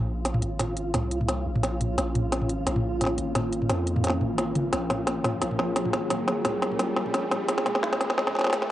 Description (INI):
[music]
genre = half-time drum and bass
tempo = 174 BPM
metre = 4/4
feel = swing 54% on 16ths, half-time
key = Bb minor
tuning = A4 = 436 Hz
[part]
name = deep dark ambient pad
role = sustained chords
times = 0.0-8.7 s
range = Bb3 to Db5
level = -31 LUFS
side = left 1 dB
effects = chorus, built-in reverb, cassette tape
[part]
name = long sustained 808-style bass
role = bass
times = 0.0-8.7 s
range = Ab1 to F2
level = -32 LUFS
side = equal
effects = tube saturation
[part]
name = organic electronic drum kit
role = drums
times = 0.0-8.7 s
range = hi-hat, snare drum, toms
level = -26 LUFS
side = equal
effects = none
[part]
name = riser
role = sound effects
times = 2.7-8.7 s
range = none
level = -37 LUFS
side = right 1 dB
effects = none
[part]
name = flickering grainy texture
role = texture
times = 0.1-8.7 s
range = F4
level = -35 LUFS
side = right 2 dB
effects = built-in reverb, cassette tape
[sound]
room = moderate spring reverb, RT60 1.2 s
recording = home recording on cassette, high-pass filter, nothing above 10.6 kHz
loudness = -24 LUFS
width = side -13 dB against mid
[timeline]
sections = 0.0-8.7 A section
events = build-up 0.0-8.7; drum fill 0.0-8.7; riser 2.7-8.7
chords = 0.0 Bbm